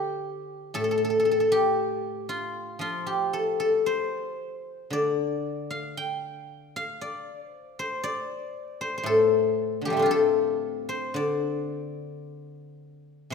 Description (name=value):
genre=chinese traditional, Chinese solo plucked strings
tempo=57 BPM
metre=2/4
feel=rubato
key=D yu mode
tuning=A4 = 440 Hz
part: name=guzheng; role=solo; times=0.0-13.3 s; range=A2 to G5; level=-25 LUFS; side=left 2 dB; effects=none
room=light reverb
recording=minimal, uncompressed stereo recording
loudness=-24 LUFS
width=side -5 dB against mid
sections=0.0-13.3 A section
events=none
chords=none